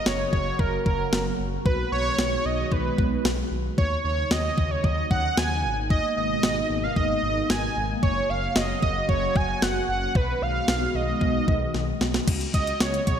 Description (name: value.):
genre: synth-pop.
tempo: 113 BPM.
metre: 4/4.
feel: straight.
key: unclear.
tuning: A4 = 441 Hz.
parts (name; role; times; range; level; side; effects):
wide unison lead; melody; 0.0-13.2 s; Bb4 to Ab5; -26 LUFS; right 2 dB; none.
phased analog pad; sustained chords; 0.0-13.2 s; Cb3 to Gb4; -30 LUFS; equal; phaser, chorus.
smooth gliding synth bass; bass; 0.1-13.2 s; Gb1 to Eb2; -30 LUFS; left 1 dB; none.
clean 12-bit digital drum machine; drums; 0.1-13.2 s; crash cymbal, hi-hat, kick drum, snare drum; -26 LUFS; equal; overdrive.
room: moderate lush hall reverb, RT60 2.6 s.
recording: bright 1980s-style digital production.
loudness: -22 LUFS.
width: side -8 dB against mid.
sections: 0.0-12.3 A section.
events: drum fill 11.7-12.3.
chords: 0.0 Gb; 1.7 B6; 3.8 Ebm7; 5.6 Abmadd9; 8.0 Gb; 10.2 B6; 12.3 Dbsus4.